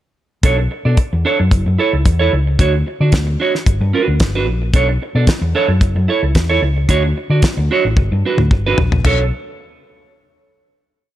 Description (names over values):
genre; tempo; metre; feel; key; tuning
disco; 111 BPM; 4/4; straight; B minor; A4 = 440 Hz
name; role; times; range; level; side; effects
clean electric guitar; accompaniment; 0.4-9.2 s; D4 to D5; -18 LUFS; right 4 dB; none
hollow-body short-scale fingered electric bass; bass; 0.4-9.3 s; F#1 to D3; -16 LUFS; left 1 dB; none
damped 70s drum kit; drums; 0.4-9.2 s; crash cymbal, hi-hat, kick drum, snare drum, toms; -14 LUFS; left 1 dB; none
room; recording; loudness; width
small room ambience; none; -13 LUFS; side -13 dB against mid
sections
0.4-9.0 breakdown; 9.0-11.2 final chord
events
drum fill 8.0-9.0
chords
0.4 Bm9; 1.5 F#m7; 2.6 Dmaj7; 3.7 Gmaj7; 4.7 Bm9; 5.8 F#m7; 6.9 Dmaj7; 8.0 Gmaj7; 9.0 Bm9